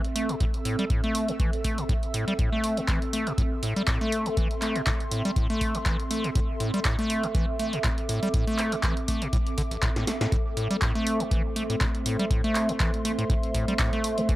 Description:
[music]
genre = acid house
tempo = 121 BPM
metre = 4/4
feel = swing 55% on 16ths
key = A minor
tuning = A4 = 440 Hz
[part]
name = acid bass, square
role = riff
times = 0.0-14.4 s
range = A1 to A3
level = -28 LUFS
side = equal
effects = overdrive, tape echo
[part]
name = punchy analog drum machine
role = drums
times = 0.0-14.4 s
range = handclaps, hi-hat, snare drum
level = -32 LUFS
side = equal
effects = none
[part]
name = ethereal airy pad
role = texture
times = 0.0-14.4 s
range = C4 to E6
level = -32 LUFS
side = right 1 dB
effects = ensemble chorus, built-in reverb, phaser, sidechain pumping
[part]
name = electronic kick drum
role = drums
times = 0.4-14.4 s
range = none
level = -27 LUFS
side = equal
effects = none
[part]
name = dark analog pad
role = sustained chords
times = 11.0-14.4 s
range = A3 to E5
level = -33 LUFS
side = right 1 dB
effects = chorus, sidechain pumping
[sound]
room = little or no reverb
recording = dry, gritty hardware recording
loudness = -24 LUFS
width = side -16 dB against mid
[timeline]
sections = 0.0-14.4 A section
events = drum fill 9.9-10.3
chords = 0.0 Am

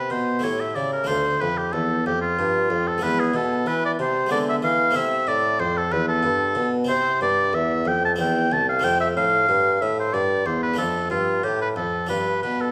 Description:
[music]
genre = classical, baroque-style sonata movement with continuo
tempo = 93 BPM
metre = 3/4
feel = straight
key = A minor, C major from 6.9 s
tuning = A4 = 437 Hz
[part]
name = clear oboe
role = melody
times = 0.0-12.7 s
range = F4 to A5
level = -24 LUFS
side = equal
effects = none
[part]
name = harpsichord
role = accompaniment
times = 0.0-12.7 s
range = C2 to G4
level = -30 LUFS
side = equal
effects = none
[part]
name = mellow bassoon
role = bass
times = 0.0-12.7 s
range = C2 to E3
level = -28 LUFS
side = equal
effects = none
[sound]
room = wet recital hall reverb, RT60 1.4 s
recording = none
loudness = -22 LUFS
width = mono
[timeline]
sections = 0.0-12.7 A section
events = none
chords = 0.4 A7; 1.1 Dm; 3.0 E; 4.3 E7/D; 5.0 Am; 6.9 C; 8.2 C/E; 8.8 F; 10.8 Dm/F; 12.1 G7

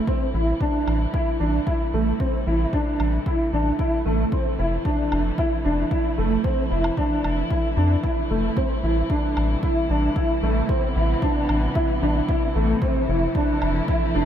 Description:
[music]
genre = piano and strings electronica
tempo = 113 BPM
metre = 4/4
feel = straight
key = A minor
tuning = A4 = 442 Hz
[part]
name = muted string quartet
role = sustained chords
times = 0.0-14.3 s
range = C3 to E4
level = -30 LUFS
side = equal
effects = sidechain pumping
[part]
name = warm upright piano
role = riff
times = 0.1-14.3 s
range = A3 to E4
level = -23 LUFS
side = right 1 dB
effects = ensemble chorus, diffuse ambient delay
[part]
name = electronic kick drum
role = drums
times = 0.1-14.0 s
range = none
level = -25 LUFS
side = equal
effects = small room ambience
[part]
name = round analog bass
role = bass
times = 0.3-14.3 s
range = F1 to F2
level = -23 LUFS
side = equal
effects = sidechain pumping
[part]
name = woodblock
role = drums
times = 0.9-13.7 s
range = none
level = -35 LUFS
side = right 2 dB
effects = none
[sound]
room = moderate plate reverb, RT60 1.9 s, studio reverb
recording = dreamy mix soaked in reverb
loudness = -20 LUFS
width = side -9 dB against mid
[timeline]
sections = 0.0-14.3 A section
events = fade-in on string quartet 0.0-14.3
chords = 0.1 Am7; 4.3 Fmaj7; 8.6 Am7; 12.8 Fmaj7

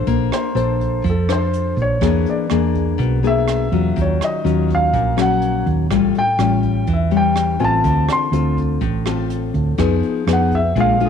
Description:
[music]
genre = bossa nova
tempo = 124 BPM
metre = 4/4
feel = straight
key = unclear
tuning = A4 = 444 Hz
[part]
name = nylon-string guitar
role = accompaniment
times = 0.0-11.1 s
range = A2 to C5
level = -19 LUFS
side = left 10 dB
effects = none
[part]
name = hollow-body short-scale fingered electric bass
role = bass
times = 0.0-11.1 s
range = A1 to F2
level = -19 LUFS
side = right 3 dB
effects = none
[part]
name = jazz brush drum kit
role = drums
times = 0.1-11.1 s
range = hi-hat, kick drum, rim click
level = -28 LUFS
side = right 6 dB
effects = none
[part]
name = warm baby grand piano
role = melody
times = 0.3-11.1 s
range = Ab4 to C6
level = -21 LUFS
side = right 1 dB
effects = none
[sound]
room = light reverb, studio reverb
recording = 1960s-style stereo with parts hard left and right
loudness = -15 LUFS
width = side -7 dB against mid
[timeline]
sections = 0.1-11.1 A section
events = grand piano solo 0.1-11.1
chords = 0.1 Bbmaj9; 2.0 E7#11; 4.0 Ebm9; 5.9 A7b13; 7.8 Dm7; 9.8 Fm7b5

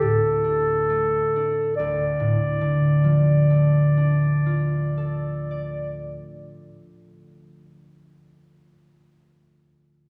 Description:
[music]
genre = classical, impressionist duo for clarinet and harp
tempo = 35 BPM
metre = 3/4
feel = rubato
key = D minor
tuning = A4 = 440 Hz
[part]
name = mellow clarinet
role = melody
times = 0.0-6.1 s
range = A4 to D5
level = -26 LUFS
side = equal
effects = none
[part]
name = concert harp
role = accompaniment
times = 0.0-8.4 s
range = D2 to D5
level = -23 LUFS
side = equal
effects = none
[sound]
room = wet recital hall reverb, RT60 1.6 s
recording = recorded in a church or concert hall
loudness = -21 LUFS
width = mono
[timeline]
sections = 0.0-1.8 A section; 1.8-6.9 B section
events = slowing down 0.0-1.8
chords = 0.0 D5; 1.8 Dm

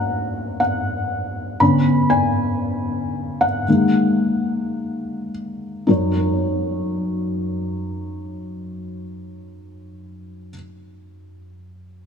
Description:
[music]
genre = pop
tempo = 53-61 BPM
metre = 4/4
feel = straight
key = F# major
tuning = A4 = 435 Hz
[part]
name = felt-muted upright piano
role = accompaniment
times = 0.0-12.1 s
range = F#2 to B5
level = -19 LUFS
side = left 1 dB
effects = none
[sound]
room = wet plate reverb, RT60 3.5 s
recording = none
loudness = -18 LUFS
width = side -7 dB against mid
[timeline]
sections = 0.0-5.9 A section; 5.9-10.4 B section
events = slowing down 0.0-5.9; felt piano solo 0.0-5.9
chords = 0.0 F#; 1.6 Bmadd9; 3.7 F#6

